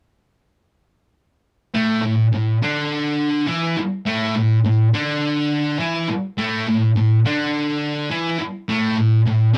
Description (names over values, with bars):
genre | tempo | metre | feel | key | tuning
rock | 104 BPM | 4/4 | straight | unclear | A4 = 443 Hz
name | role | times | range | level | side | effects
thick fuzz guitar | solo | 1.7-9.6 s | A2 to E4 | -20 LUFS | equal | distortion
room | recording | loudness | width
light reverb | rough rehearsal-room recording, warm saturation | -20 LUFS | mono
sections
1.8-9.6 A section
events
none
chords
1.8 A5